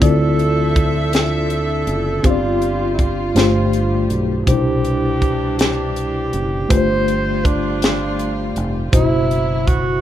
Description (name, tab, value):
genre	slow gospel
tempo	54 BPM (dotted quarters)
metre	6/8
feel	straight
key	C major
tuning	A4 = 438 Hz
part	mellow tenor saxophone	melody	0.0-10.0 s	D4 to C5	-22 LUFS	right 3 dB	plate reverb, tape echo
part	mellow tine electric piano	accompaniment	0.0-10.0 s	G2 to D5	-19 LUFS	left 2 dB	medium stereo tremolo, plate reverb
part	warm chamber string section	sustained chords	0.0-10.0 s	B2 to E5	-28 LUFS	equal	plate reverb
part	fingered electric bass	bass	0.0-10.0 s	F1 to D2	-23 LUFS	equal	none
part	tight funk drum kit	drums	0.0-9.8 s	hi-hat, kick drum, snare drum	-18 LUFS	equal	none
room	wet small room ambience, RT60 0.5 s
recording	rough home demo mix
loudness	-15 LUFS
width	side -11 dB against mid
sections	0.0-10.0 A section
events	none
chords	0.0 Dm9; 2.2 G7sus4; 3.4 G9sus4; 4.5 Cmaj9; 6.7 G9sus4; 8.9 Cmaj7#11/F#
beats	| 0.02 1.13 | 2.25 3.36 | 4.48 5.59 | 6.71 7.82 | 8.93